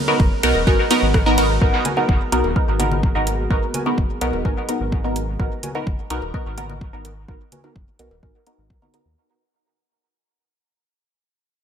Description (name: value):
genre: dub techno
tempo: 127 BPM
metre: 4/4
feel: straight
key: G# minor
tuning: A4 = 440 Hz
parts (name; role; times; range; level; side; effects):
- dark analog pad; sustained chords; 0.0-9.1 s; B3 to C#5; -32 LUFS; equal; chorus, sidechain pumping
- drifting glass-harmonics texture; texture; 0.0-1.6 s; A#4; -34 LUFS; right 6 dB; none
- filtered dub chord stab; stabs; 0.1-9.1 s; B3 to A#4; -20 LUFS; right 1 dB; chorus, phaser, sidechain pumping, dub echo
- cowbell and congas; percussion; 0.1-8.9 s; none; -31 LUFS; left 3 dB; overdrive, sidechain pumping on perc, dub echo
- round analog bass; bass; 0.2-9.2 s; D#1 to D#2; -24 LUFS; equal; sidechain pumping
- deep house drum kit; drums; 0.2-9.0 s; hi-hat, ride cymbal, rim click; -29 LUFS; right 1 dB; overdrive, dub echo
- electronic kick drum; drums; 0.2-8.8 s; none; -20 LUFS; equal; overdrive
- warbly lo-fi synth keys; riff; 0.7-8.3 s; F#4 to G#5; -36 LUFS; right 4 dB; none
room: light reverb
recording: echo-heavy mix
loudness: -17 LUFS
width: side -8 dB against mid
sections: 0.0-1.6 A section; 1.6-9.2 B section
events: fade-out 1.6-9.2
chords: 0.0 G#m9